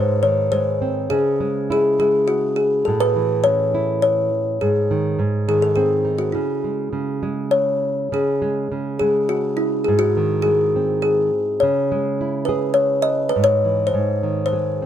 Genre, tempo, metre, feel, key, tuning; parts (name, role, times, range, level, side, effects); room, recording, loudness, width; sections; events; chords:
children's music, lullaby; 103 BPM; 3/4; straight; C# minor; A4 = 440 Hz
kalimba; melody; 0.0-14.9 s; E4 to D#5; -18 LUFS; left 2 dB
nylon-string guitar; accompaniment; 0.0-14.9 s; G#2 to G#4; -23 LUFS; right 4 dB
moderate small room reverb, RT60 0.6 s; -17 LUFS; side -10 dB against mid
0.0-8.1 A section; 8.1-14.9 A section
0.0 G#; 1.1 C#m; 2.9 A; 4.6 G#5; 5.2 G#; 6.3 C#5; 9.9 G#; 11.6 C#m; 13.4 C#m/G#; 13.9 G#